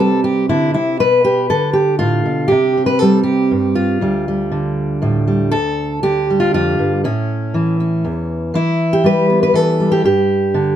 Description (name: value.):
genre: folk, solo fingerstyle acoustic guitar.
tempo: 120 BPM.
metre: 3/4.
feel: straight.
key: D dorian.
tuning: A4 = 440 Hz.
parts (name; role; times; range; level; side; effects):
fingerpicked steel-string acoustic guitar; solo; 0.0-10.8 s; D2 to B4; -13 LUFS; equal; none.
room: moderate studio reverb, RT60 0.5 s.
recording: none.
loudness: -13 LUFS.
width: side -10 dB against mid.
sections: 0.0-5.5 A section; 5.5-10.8 B section.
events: none.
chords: 0.0 C; 1.0 G9; 2.5 C5; 4.0 Dm; 7.0 A; 8.5 Em; 10.0 G5.